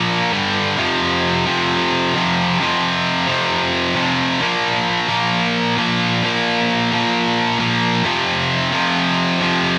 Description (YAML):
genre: metal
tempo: 132 BPM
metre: 4/4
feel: straight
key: unclear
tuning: A4 = 441 Hz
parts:
  - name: scooped high-gain guitar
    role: solo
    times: 0.0-9.8 s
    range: F2 to Bb3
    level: -17 LUFS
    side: equal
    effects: distortion
room: moderate studio reverb, RT60 0.6 s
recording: none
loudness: -17 LUFS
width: mono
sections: 0.8-9.8 A section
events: half time 0.8-9.8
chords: 0.3 G5; 0.8 F5; 4.4 Bb5; 8.1 F5